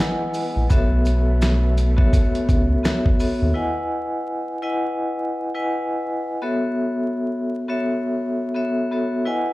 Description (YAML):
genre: hip hop, boom-bap hip-hop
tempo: 84 BPM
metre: 4/4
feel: swing 58% on 16ths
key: E major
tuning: A4 = 440 Hz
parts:
  - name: vibraphone with medium mallets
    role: accompaniment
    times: 0.0-9.5 s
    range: B3 to G#5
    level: -22 LUFS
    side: left 1 dB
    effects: high-pass filter, low-pass filter
  - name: warm studio string section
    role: sustained chords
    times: 0.0-3.5 s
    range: B2 to B3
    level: -33 LUFS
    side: right 1 dB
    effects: high-pass filter, low-pass filter
  - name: dusty soul sampler-style drum kit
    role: drums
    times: 0.0-3.4 s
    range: hi-hat, kick drum, rim click, snare drum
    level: -20 LUFS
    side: equal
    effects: none
  - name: maracas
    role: percussion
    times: 0.3-3.4 s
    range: none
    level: -44 LUFS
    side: right 1 dB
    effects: none
  - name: round analog bass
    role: bass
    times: 0.6-3.5 s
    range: A#1 to D#2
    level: -18 LUFS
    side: equal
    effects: none
room: small room ambience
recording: played on a big sound system in a bare room, large studio reverb, vinyl crackle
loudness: -19 LUFS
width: side -19 dB against mid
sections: 0.0-3.6 A section; 3.6-9.5 B section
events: none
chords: 0.0 Emaj7; 0.7 B7sus4; 3.6 Emaj7; 6.4 B7sus4